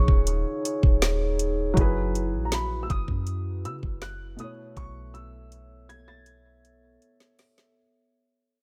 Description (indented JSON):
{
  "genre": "contemporary R&B",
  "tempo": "80 BPM",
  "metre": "4/4",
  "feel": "straight",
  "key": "unclear",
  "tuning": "A4 = 440 Hz",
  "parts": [
    { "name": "dark baby grand piano", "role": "melody", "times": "0.0-7.4 s", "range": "Bb5 to A6", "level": "-40 LUFS", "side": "equal", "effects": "delay" },
    { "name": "felt-muted upright piano", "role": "accompaniment", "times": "0.0-7.8 s", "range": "B2 to C#5", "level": "-36 LUFS", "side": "equal", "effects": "none" },
    { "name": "glass harmonica", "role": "sustained chords", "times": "0.0-7.7 s", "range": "B3 to E5", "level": "-36 LUFS", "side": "equal", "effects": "none" },
    { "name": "soft 808-style bass", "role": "bass", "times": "0.0-7.0 s", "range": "Eb1 to Db3", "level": "-31 LUFS", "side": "equal", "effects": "none" },
    { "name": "smooth R&B drum kit", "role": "drums", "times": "0.1-7.8 s", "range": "hi-hat, kick drum, snare drum", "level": "-25 LUFS", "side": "equal", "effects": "none" }
  ],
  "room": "small room ambience",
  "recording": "none",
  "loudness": "-26 LUFS",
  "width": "mono",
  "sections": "0.0-7.8 A section",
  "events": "fade-out 0.0-7.8; drum fill 4.8-7.8",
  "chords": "0.0 Eb9sus4; 1.8 Gb9sus4; 4.4 B9sus4",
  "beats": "0.27 1.02 | 1.77 2.52 3.27 4.02 | 4.77 5.52 6.27 7.02"
}